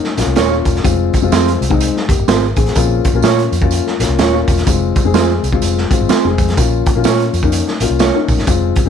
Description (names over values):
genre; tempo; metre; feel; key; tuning
uptempo 1960s-style soul; 126 BPM; 4/4; swing 60% on 8ths; Bb minor; A4 = 438 Hz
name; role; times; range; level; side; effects
dark upright piano; accompaniment; 0.0-8.9 s; Ab3 to Bb4; -17 LUFS; left 13 dB; none
raw garage drum kit; drums; 0.0-8.9 s; hi-hat, kick drum, snare drum; -16 LUFS; equal; none
vintage muted fingered electric bass; bass; 0.2-8.9 s; Eb1 to Bb2; -18 LUFS; right 1 dB; none
tambourine; percussion; 0.2-8.9 s; none; -29 LUFS; right 15 dB; none
mellow electric guitar; stabs; 0.4-8.2 s; C4 to Db5; -17 LUFS; right 13 dB; none
room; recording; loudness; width
studio ambience; 1960s-style stereo with parts hard left and right; -12 LUFS; side -8 dB against mid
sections
0.0-8.9 A section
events
none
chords
0.0 Bbm; 0.8 Fm; 2.8 Bbm; 4.7 Fm; 6.6 Bbm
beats
0.37 | 0.85 1.32 1.80 2.28 | 2.76 3.24 3.71 4.19 | 4.67 5.15 5.62 6.10 | 6.58 7.05 7.53 8.00 | 8.48